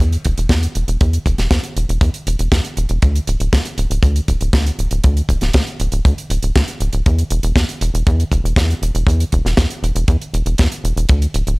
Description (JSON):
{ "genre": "italo disco", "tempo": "119 BPM", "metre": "4/4", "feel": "straight", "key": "unclear", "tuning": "A4 = 436 Hz", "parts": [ { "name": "tight sequencer bass", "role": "bass", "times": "0.0-11.6 s", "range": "D1 to E2", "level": "-16 LUFS", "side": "equal", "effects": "none" }, { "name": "tight funk drum kit", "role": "drums", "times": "0.0-11.6 s", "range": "hi-hat, snare drum", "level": "-22 LUFS", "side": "right 1 dB", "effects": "studio reverb" }, { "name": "kick drum", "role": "drums", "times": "0.3-11.2 s", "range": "none", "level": "-16 LUFS", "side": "equal", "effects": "studio reverb" } ], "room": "little or no reverb", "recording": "dry, gritty hardware recording, transformer saturation, faint mains hum", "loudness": "-14 LUFS", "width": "side -27 dB against mid", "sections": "0.0-11.6 A section", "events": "none", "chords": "none" }